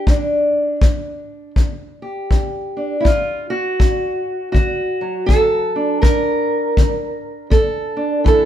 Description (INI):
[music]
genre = acoustic country blues, solo or duo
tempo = 81 BPM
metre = 4/4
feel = swing 61% on 8ths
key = unclear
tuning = A4 = 440 Hz
[part]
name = fingerpicked steel-string acoustic guitar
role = melody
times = 0.0-8.5 s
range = G2 to Bb4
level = -18 LUFS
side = right 1 dB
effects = none
[part]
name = kick drum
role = drums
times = 0.1-8.5 s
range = none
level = -15 LUFS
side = left 1 dB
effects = none
[sound]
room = light reverb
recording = band playing live in one room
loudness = -15 LUFS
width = side -11 dB against mid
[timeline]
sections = 0.0-8.5 A section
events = none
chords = 0.0 G5; 3.0 D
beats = | 0.07 0.81 1.56 2.30 | 3.05 3.79 4.54 5.28 | 6.03 6.77 7.51 8.25